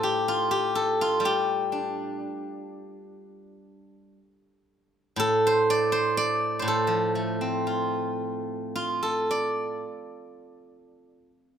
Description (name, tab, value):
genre	chinese traditional, Chinese solo plucked strings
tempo	44-62 BPM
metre	4/4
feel	rubato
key	unclear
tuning	A4 = 440 Hz
part	steel-string zither	solo	0.0-11.3 s	A2 to D5	-24 LUFS	equal	none
room	light reverb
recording	close, detailed microphones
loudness	-24 LUFS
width	side -8 dB against mid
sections	0.0-11.6 A section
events	none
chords	none